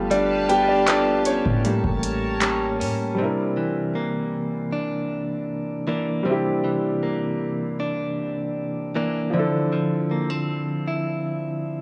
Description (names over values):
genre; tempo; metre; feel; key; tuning
contemporary R&B; 78 BPM; 4/4; straight; unclear; A4 = 440 Hz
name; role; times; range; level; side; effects
warm concert grand piano; accompaniment; 0.0-11.8 s; F3 to G5; -28 LUFS; equal; none
chorused pulse-width pad; sustained chords; 0.0-3.2 s; G4 to A5; -30 LUFS; equal; sidechain pumping
direct-recorded clean electric guitar; arpeggios; 0.0-11.8 s; A2 to A4; -28 LUFS; equal; harmonic tremolo, analog delay
warm 808-style bass; bass; 0.0-3.2 s; G1 to A2; -31 LUFS; equal; tube saturation
booming analog drum machine; drums; 0.1-3.0 s; handclaps, hi-hat, kick drum; -28 LUFS; equal; none
room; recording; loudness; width
little or no reverb; dry, gritty hardware recording, cassette tape, small room ambience; -24 LUFS; mono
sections
0.0-3.2 A section; 3.2-11.8 B section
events
grand piano solo 0.0-3.2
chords
0.0 G9; 1.6 A7b9; 3.2 C9; 9.3 Dm9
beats
| 0.11 0.88 1.65 2.42 | 3.19 3.95 4.72 5.49 | 6.26 7.03 7.80 8.57 | 9.34 10.11 10.88 11.65